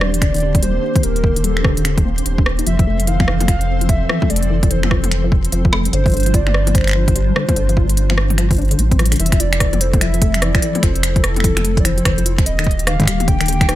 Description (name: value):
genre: IDM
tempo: 147 BPM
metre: 4/4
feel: swing 62% on 16ths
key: unclear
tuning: A4 = 440 Hz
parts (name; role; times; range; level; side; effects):
- warbly nostalgic lead; melody; 0.0-13.8 s; A4 to G5; -24 LUFS; equal; chorus, ping-pong delay
- hollow soft pad; sustained chords; 0.0-13.8 s; D3 to C5; -26 LUFS; equal; ensemble chorus
- deep acid bass; arpeggios; 0.0-13.8 s; D3 to F4; -23 LUFS; left 4 dB; ping-pong delay
- warm sub bass; bass; 0.0-13.8 s; Eb1 to A1; -18 LUFS; equal; none
- organic electronic drum kit; drums; 0.0-13.8 s; finger snaps, hi-hat, rim click, toms; -21 LUFS; left 1 dB; overdrive
- flickering grainy texture; texture; 0.0-9.2 s; C4 to C5; -32 LUFS; right 1 dB; built-in reverb
- electronic kick drum; drums; 0.2-13.7 s; none; -17 LUFS; equal; overdrive
room: little or no reverb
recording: none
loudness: -13 LUFS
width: side -14 dB against mid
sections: 0.0-9.2 A section; 9.2-13.8 B section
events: drum fill 9.0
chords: 0.0 Ebmaj7; 2.7 Fmaj7; 5.9 G7sus4; 9.2 Fmaj7; 12.5 Ebmaj7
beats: 0.22 0.62 | 1.03 1.44 1.85 2.26 | 2.67 3.07 3.48 3.89 | 4.30 4.71 5.12 5.52 | 5.93 6.34 6.75 7.16 | 7.56 7.97 8.38 8.79 | 9.20 9.61 10.01 10.42 | 10.83 11.24 11.64 12.05 | 12.46 12.87 13.28 13.69